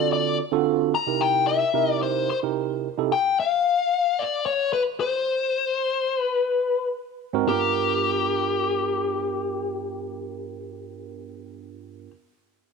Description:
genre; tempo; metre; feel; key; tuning
blues; 110 BPM; 4/4; straight; unclear; A4 = 441 Hz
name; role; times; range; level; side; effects
dark smooth lead guitar; melody; 0.0-12.1 s; G4 to Bb5; -23 LUFS; left 6 dB; overdrive
bright tine electric piano; accompaniment; 0.0-3.1, 7.3-12.1 s; G2 to Bb4; -26 LUFS; right 13 dB; lush chorus
room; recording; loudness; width
wet echo chamber reverb, RT60 1.5 s; 1960s-style stereo with parts hard left and right; -21 LUFS; side -4 dB against mid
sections
0.0-7.5 A section; 7.5-11.8 B section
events
none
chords
0.0 D7#9; 0.9 C7#9; 3.1 N.C.; 6.9 Ab9; 7.5 G7#9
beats
0.38 | 0.92 1.47 2.01 2.56 | 3.10 3.65 4.20 4.74 | 5.29 5.83 6.38 6.93 | 7.47 8.02 8.56 9.11 | 9.66 10.20 10.75 11.29

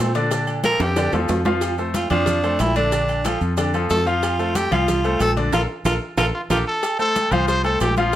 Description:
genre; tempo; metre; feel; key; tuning
latin, salsa; 184 BPM; 4/4; straight; F major; A4 = 440 Hz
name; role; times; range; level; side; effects
raspy tenor saxophone; melody; 0.0-6.6 s; C4 to Bb4; -22 LUFS; right 1 dB; none
clear baby grand piano; accompaniment; 0.0-8.2 s; D3 to F5; -24 LUFS; left 2 dB; none
fingered electric bass; bass; 0.0-8.2 s; Bb1 to Bb2; -23 LUFS; equal; none
maracas; percussion; 0.1-8.2 s; none; -37 LUFS; right 6 dB; none
cowbell and bongos; percussion; 0.2-8.2 s; none; -31 LUFS; left 5 dB; none
agogo bells and timbales; percussion; 0.3-8.2 s; none; -28 LUFS; right 3 dB; none
congas; percussion; 0.3-8.1 s; none; -29 LUFS; equal; none
clear trumpet; melody; 6.3-8.2 s; F4 to C5; -21 LUFS; equal; none
room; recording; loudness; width
moderate studio reverb, RT60 0.8 s; none; -18 LUFS; side -12 dB against mid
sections
0.0-6.8 A section; 6.8-8.2 B section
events
tenor saxophone solo 0.0-6.8; drum fill 0.6-1.6, 5.5-6.8; band accent 5.5-6.8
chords
0.3 Bbmaj7; 1.6 F; 2.9 Bbmaj7; 4.2 F; 5.5 Bb5; 6.8 F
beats
| 0.31 0.64 0.97 1.29 | 1.62 1.94 2.27 2.60 | 2.92 3.25 3.58 3.90 | 4.23 4.55 4.88 5.20 | 5.53 5.86 6.18 6.51 | 6.83 7.16 7.48 7.81 | 8.13

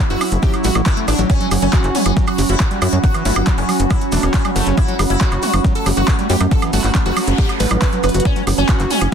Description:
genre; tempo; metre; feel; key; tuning
psychedelic trance; 138 BPM; 4/4; straight; F# phrygian; A4 = 439 Hz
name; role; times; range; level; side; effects
evolving wavetable pad; sustained chords; 0.0-9.1 s; F#3 to F#4; -24 LUFS; right 4 dB; chorus, built-in reverb, sidechain pumping
overdriven acid bass; riff; 0.0-9.0 s; E3 to G4; -26 LUFS; moving between left 8 dB and right 6 dB; distortion, auto-pan, sidechain pumping, digital delay
warbly tape-like pad; texture; 0.0-9.1 s; C#4 to C#6; -24 LUFS; right 3 dB; chorus, built-in reverb, sidechain pumping
sitar; melody; 0.1-9.1 s; A3 to B4; -23 LUFS; equal; phaser, sidechain pumping, ping-pong delay
tight sequencer bass; bass; 0.1-9.1 s; E1 to F#2; -18 LUFS; left 1 dB; none
big-room dance drum kit; drums; 0.1-9.1 s; handclaps, hi-hat, woodblock; -23 LUFS; right 3 dB; overdrive
cabasa; percussion; 0.1-9.1 s; none; -34 LUFS; right 3 dB; none
electronic kick drum; drums; 0.4-8.8 s; none; -16 LUFS; equal; none
noise sweep; sound effects; 6.7-8.3 s; none; -29 LUFS; right 2 dB; none
room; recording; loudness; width
little or no reverb; dense, heavily limited modern master; -14 LUFS; side -7 dB against mid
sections
0.0-9.1 A section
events
noise sweep 6.7-8.3; drum fill 8.0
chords
0.0 F#5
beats
0.43 0.86 | 1.30 1.73 2.17 2.60 | 3.04 3.47 3.90 4.34 | 4.78 5.21 5.64 6.08 | 6.51 6.95 7.38 7.82 | 8.25 8.69 9.12

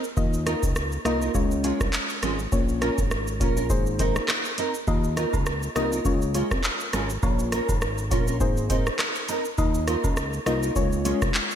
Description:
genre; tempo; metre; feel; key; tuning
dancehall; 102 BPM; 4/4; swing 56% on 16ths; Ab major; A4 = 442 Hz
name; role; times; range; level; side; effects
nylon-string guitar; arpeggios; 0.0-11.2 s; Ab3 to Bb4; -30 LUFS; right 3 dB; ensemble chorus, ping-pong delay
booming analog drum machine; drums; 0.0-11.6 s; handclaps, hi-hat, kick drum, rim click, shaker; -26 LUFS; equal; gated reverb
soft round pluck; accompaniment; 0.2-11.2 s; Ab3 to Eb5; -29 LUFS; left 3 dB; chorus, sidechain pumping
fat analog bass; bass; 0.2-11.3 s; Ab1 to Eb2; -29 LUFS; equal; none
woodblock and cabasa; percussion; 4.9-11.2 s; none; -39 LUFS; right 2 dB; none
room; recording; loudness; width
light reverb; bright 1980s-style digital production; -22 LUFS; side -9 dB against mid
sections
0.0-11.6 A section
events
none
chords
0.2 Ebsus2; 1.3 Db; 2.5 Bbm; 3.7 Abadd9; 4.9 Ebsus2; 6.1 Db; 7.2 Bbm; 8.4 Abadd9; 9.6 Ebsus2; 10.8 Db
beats
| 0.17 0.76 1.35 1.94 | 2.52 3.11 3.70 4.29 | 4.88 5.46 6.05 6.64 | 7.23 7.82 8.41 8.99 | 9.58 10.17 10.76 11.35

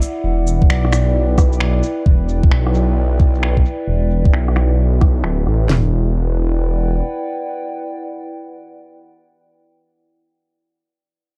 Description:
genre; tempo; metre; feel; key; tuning
future garage; 132 BPM; 4/4; swing 65% on 16ths; E minor; A4 = 441 Hz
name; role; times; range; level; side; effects
muted felt-like synth keys; accompaniment; 0.0-2.5 s; B4 to E5; -31 LUFS; equal; chorus, sidechain pumping, dub echo
warbly tape-like pad; sustained chords; 0.0-9.7 s; E4 to G5; -27 LUFS; equal; chorus, built-in reverb, sidechain pumping
electronic shaker, finger snaps and rim click; drums; 0.0-5.6 s; none; -28 LUFS; equal; low-pass filter on perc, studio reverb, low-pass filter on snare, low-pass filter on hats, low-pass filter on cymbals
swelling detuned saw bass; bass; 0.2-7.0 s; D1 to B1; -18 LUFS; equal; sidechain pumping
garage drum kit; drums; 0.6-5.8 s; kick drum, snare drum, toms; -16 LUFS; equal; studio reverb
room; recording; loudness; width
light reverb; dark, warm production; -16 LUFS; mono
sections
0.0-5.7 A section; 5.7-9.3 B section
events
filter sweep on drum 0.0-5.7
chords
0.0 Em7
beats
| 0.24 0.70 1.15 1.61 | 2.06 2.52 2.97 3.42 | 3.88 4.33 4.79 5.24 | 5.70 6.15 6.61 7.06 | 7.52 7.97 8.43 8.88

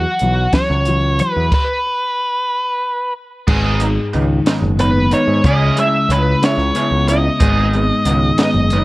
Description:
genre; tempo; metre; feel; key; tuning
indie rock; 61 BPM (dotted quarters); 6/8; straight; unclear; A4 = 440 Hz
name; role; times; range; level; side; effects
octave-fuzz lead guitar; melody; 0.0-8.8 s; F#4 to E5; -18 LUFS; equal; distortion
twelve-string electric guitar; riff; 0.0-8.8 s; G#2 to E4; -19 LUFS; left 2 dB; none
growling picked electric bass; bass; 0.0-8.8 s; F#1 to G#2; -17 LUFS; equal; overdrive
compact cocktail drum kit; drums; 0.2-8.8 s; crash cymbal, hi-hat, kick drum, snare drum; -18 LUFS; equal; none
biting overdriven guitar; riff; 3.5-8.8 s; B3 to G#4; -21 LUFS; right 3 dB; analog chorus, tape echo
room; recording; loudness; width
little or no reverb; worn, warbling old tape, cassette tape, warbly pitch drift; -13 LUFS; side -20 dB against mid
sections
0.0-3.5 A section; 3.5-8.8 B section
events
stop 1.5-3.5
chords
0.0 Esus2; 3.5 G#m; 5.5 C#m7; 7.4 G#m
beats
0.54 | 1.52 2.50 | 3.49 4.47 | 5.45 6.43 | 7.41 8.39

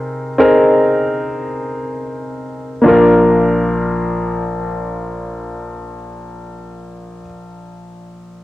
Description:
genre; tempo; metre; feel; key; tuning
pop; free time; none; none; Bb major; A4 = 440 Hz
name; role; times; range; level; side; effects
bright concert grand piano; accompaniment; 0.0-8.4 s; Bb1 to Bb4; -14 LUFS; equal; cassette tape
room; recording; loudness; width
wet spring reverb, RT60 1.4 s; home recording on cassette; -12 LUFS; side -16 dB against mid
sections
0.0-2.9 A section; 2.9-7.9 B section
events
slowing down 0.0-2.9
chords
0.0 Abadd9/C; 2.9 Bb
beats
free time

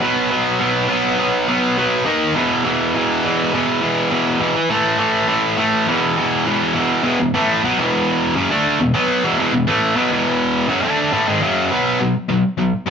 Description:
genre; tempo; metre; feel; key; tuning
punk; 205 BPM; 4/4; straight; unclear; A4 = 440 Hz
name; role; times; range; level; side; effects
distorted electric guitar; solo; 0.0-12.9 s; E2 to D#4; -15 LUFS; equal; overdrive
room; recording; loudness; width
moderate large studio reverb, RT60 0.9 s; band playing live in one room, nothing above 7.8 kHz; -15 LUFS; side -6 dB against mid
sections
0.0-7.0 A section; 7.0-11.7 B section; 11.7-12.9 C section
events
none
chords
0.0 B5; 2.1 D#5; 2.4 E5; 4.6 A5; 5.9 E5; 7.3 A5; 7.6 E5; 8.5 D5; 8.8 E5; 8.9 B5; 9.2 E5; 9.7 A5; 10.0 E5; 10.8 D5; 11.1 E; 11.4 F#5; 11.7 B5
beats
| 0.02 0.31 0.60 0.90 | 1.19 1.48 1.78 2.07 | 2.36 2.65 2.95 3.24 | 3.53 3.83 4.12 4.41 | 4.71 5.00 5.29 5.58 | 5.88 6.17 6.46 6.75 | 7.05 7.34 7.63 7.92 | 8.21 8.51 8.80 9.09 | 9.38 9.67 9.97 10.26 | 10.55 10.84 11.13 11.42 | 11.72 12.01 12.30 12.59 | 12.88

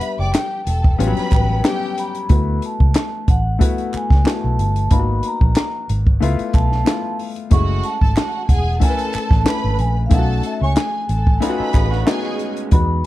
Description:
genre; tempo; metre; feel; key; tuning
lush 1970s-style soul; 92 BPM; 4/4; swing 54% on 16ths; unclear; A4 = 437 Hz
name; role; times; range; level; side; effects
vibraphone with soft mallets; melody; 0.0-13.0 s; E5 to C#6; -25 LUFS; right 1 dB; slapback echo
warm symphonic violin section; second line; 0.0-2.1, 7.5-12.6 s; F#4 to D6; -28 LUFS; right 2 dB; none
warm baby grand piano; accompaniment; 0.0-13.1 s; F#3 to B4; -24 LUFS; left 6 dB; none
compact cocktail drum kit; drums; 0.0-12.9 s; hi-hat, kick drum, snare drum; -16 LUFS; equal; none
vintage muted fingered electric bass; bass; 0.2-13.0 s; E1 to E2; -18 LUFS; equal; none
group handclap; percussion; 0.3-12.2 s; none; -32 LUFS; right 4 dB; none
electric guitar through a small old amp; riff; 11.4-12.7 s; G#3 to B4; -27 LUFS; right 11 dB; vibrato effect
room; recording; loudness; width
little or no reverb; dark, warm production; -15 LUFS; side -16 dB against mid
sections
0.0-13.1 A section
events
none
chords
0.0 Em7; 1.0 A13; 2.3 D69 (rootless); 4.9 G#m9; 6.2 C#7#9b13 (rootless); 7.5 F#m9; 10.1 B9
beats
0.34 1.00 1.65 | 2.30 2.95 3.60 4.25 | 4.91 5.56 6.21 6.86 | 7.51 8.16 8.81 9.47 | 10.12 10.77 11.42 12.07 | 12.72

